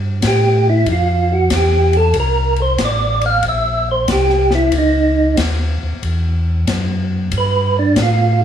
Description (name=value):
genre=soul jazz organ trio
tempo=93 BPM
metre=4/4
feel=swing 67% on 8ths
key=unclear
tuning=A4 = 441 Hz
part: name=mellow tonewheel organ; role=bass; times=0.0-8.4 s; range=A1 to A2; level=-17 LUFS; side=equal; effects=slow rotary speaker
part: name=swinging big-band drum kit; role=drums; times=0.2-8.2 s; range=hi-hat, kick drum, ride cymbal, snare drum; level=-23 LUFS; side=left 3 dB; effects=none
part: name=percussive tonewheel organ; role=melody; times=0.3-8.4 s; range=D4 to F5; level=-15 LUFS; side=right 2 dB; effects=slow rotary speaker
room=little or no reverb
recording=small room ambience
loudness=-13 LUFS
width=side -9 dB against mid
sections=0.0-8.4 A section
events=tonewheel organ solo 0.0-8.4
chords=0.0 Gsus2; 2.2 Amadd11; 4.7 C#madd9; 7.3 Gsus2